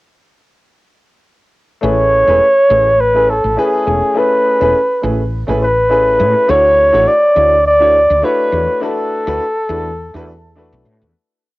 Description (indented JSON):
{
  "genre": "sunset chillout",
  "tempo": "103 BPM",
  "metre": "4/4",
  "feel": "swing 55% on 16ths",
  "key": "A major",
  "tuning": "A4 = 440 Hz",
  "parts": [
    { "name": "mellow flugelhorn", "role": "melody", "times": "1.8-10.5 s", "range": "G#4 to D5", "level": "-11 LUFS", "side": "equal", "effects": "cassette tape" },
    { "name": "clear grand piano", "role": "accompaniment", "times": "1.8-11.1 s", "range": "A3 to C#5", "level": "-19 LUFS", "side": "left 1 dB", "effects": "auto-pan, low-pass filter, cassette tape" },
    { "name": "woody fretless electric bass", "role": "bass", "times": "1.8-11.1 s", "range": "E1 to A2", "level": "-20 LUFS", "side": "equal", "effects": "ensemble chorus" }
  ],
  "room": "moderate booth ambience, RT60 0.2 s",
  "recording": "home recording on cassette",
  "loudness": "-10 LUFS",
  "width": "side -19 dB against mid",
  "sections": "1.8-11.1 groove",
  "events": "fade-out 8.0-11.1",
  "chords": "1.8 Amaj9; 6.5 Dmaj7; 8.5 E9sus4",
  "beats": "| 1.83 2.41 2.99 3.58 | 4.16 4.74 5.32 5.91 | 6.49 7.07 7.65 8.23 | 8.82 9.40 9.98 10.57"
}